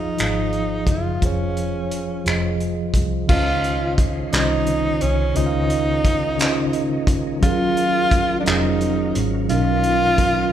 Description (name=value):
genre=slow six-eight R&B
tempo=58 BPM (dotted quarters)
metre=6/8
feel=straight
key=Db major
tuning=A4 = 440 Hz
part: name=breathy tenor saxophone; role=melody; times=0.0-10.5 s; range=Db4 to F4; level=-22 LUFS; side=equal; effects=none
part: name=mellow tine electric piano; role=accompaniment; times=0.0-10.5 s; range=Cb3 to F5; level=-23 LUFS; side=right 1 dB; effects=medium stereo tremolo
part: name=vintage muted fingered electric bass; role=bass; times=0.0-10.5 s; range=F1 to Db2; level=-24 LUFS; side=equal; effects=none
part: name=cloth-damped thuddy drum kit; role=drums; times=0.2-10.3 s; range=crash cymbal, finger snaps, handclaps, hi-hat, kick drum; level=-22 LUFS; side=equal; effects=none
part: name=tonewheel organ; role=sustained chords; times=3.3-10.5 s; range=Eb3 to C5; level=-32 LUFS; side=left 1 dB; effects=chorus vibrato, fast rotary speaker
room=moderate scoring stage reverb, RT60 2.0 s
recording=recorded in a church or concert hall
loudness=-17 LUFS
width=side -10 dB against mid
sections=0.0-3.3 A section; 3.3-10.5 B section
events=none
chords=0.0 Fm7; 3.3 Dbmaj9; 7.4 Gbmaj7; 9.5 Cbmaj9#11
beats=0.18 | 1.22 2.25 | 3.29 4.32 | 5.36 6.39 | 7.43 8.46 | 9.49